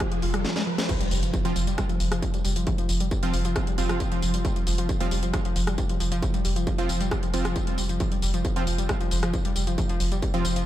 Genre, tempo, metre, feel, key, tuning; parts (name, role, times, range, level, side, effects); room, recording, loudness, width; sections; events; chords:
driving peak-time techno; 135 BPM; 4/4; straight; A4 = 440 Hz
warbly dusty pluck; riff; 0.0-10.6 s; F3 to F4; -30 LUFS; equal; chorus, tube saturation, sidechain pumping, analog delay
electronic kick drum; drums; 0.0-10.3 s; -27 LUFS; equal; distortion
techno drum kit; drums; 0.0-10.6 s; crash cymbal, hi-hat, rim click, snare drum, tambourine; -32 LUFS; equal; sidechain pumping on hats, sidechain pumping on cymbals, sidechain pumping on perc
riser and impact; sound effects; 0.0-2.7 s; -36 LUFS; equal
saturated sub bass; bass; 0.2-10.7 s; F1; -28 LUFS; equal; overdrive, sidechain pumping, low-pass filter
supersaw stab; stabs; 1.4-10.4 s; F3 to F4; -32 LUFS; right 3 dB; sidechain pumping, diffuse ambient delay
light reverb; -23 LUFS; side -13 dB against mid
0.9-10.7 A section
riser 0.0-0.9; drum fill 0.4-0.9; drop 0.9-10.7; impact 0.9-2.7
0.0 F5